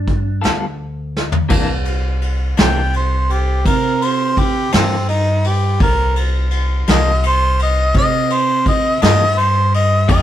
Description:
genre	slow blues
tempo	56 BPM (dotted quarters)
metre	12/8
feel	straight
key	unclear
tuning	A4 = 440 Hz
part	electric guitar through a small old amp	second line	0.0-0.8 s	D4	-30 LUFS	right 7 dB	none
part	upright bass	bass	0.0-10.2 s	C2 to C3	-17 LUFS	equal	none
part	vintage brush drum kit	drums	0.1-10.2 s	crash cymbal, hi-hat, kick drum, ride cymbal, snare drum, toms	-18 LUFS	equal	none
part	clean electric guitar	accompaniment	0.4-10.2 s	C3 to A4	-22 LUFS	left 3 dB	tremolo
part	warm harmonica	melody	2.6-10.2 s	C4 to G5	-17 LUFS	equal	none
room	light reverb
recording	rough rehearsal-room recording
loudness	-13 LUFS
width	side -11 dB against mid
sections	0.0-1.5 A section; 1.5-10.2 B section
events	drum fill 1.2-1.5; harmonica solo 1.5-10.2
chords	0.0 G9; 1.5 C9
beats	0.44 | 1.51 2.59 3.66 4.73 | 5.81 6.88 7.95 9.02 | 10.09

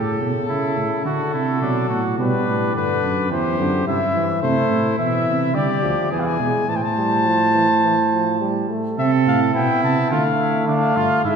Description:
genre	classical, imitative canzona for brass ensemble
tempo	106 BPM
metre	4/4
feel	straight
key	C major, A minor from 4.4 s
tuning	A4 = 443 Hz
part	warm cornet	melody	0.0-11.4 s	A4 to A5	-22 LUFS	left 3 dB	none
part	warm trumpet	second line	0.0-11.4 s	D4 to C5	-25 LUFS	right 3 dB	none
part	warm trombone	accompaniment	0.0-11.4 s	C3 to C4	-24 LUFS	right 2 dB	none
part	dark tuba	bass	0.0-11.4 s	D2 to D3	-22 LUFS	right 2 dB	none
room	wet concert hall reverb, RT60 2.4 s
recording	recorded in a church or concert hall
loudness	-17 LUFS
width	side -6 dB against mid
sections	0.0-9.0 A section; 9.0-11.4 B section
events	none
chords	0.0 A; 1.1 D; 2.2 G; 3.3 C/E; 4.4 Am; 5.5 Dm; 6.1 E; 6.7 Am; 10.1 Dm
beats	0.49 1.05 1.62 | 2.18 2.75 3.31 3.87 | 4.43 4.99 5.55 6.11 | 6.68 7.26 7.83 8.41 | 8.98 9.55 10.11 10.68 | 11.24

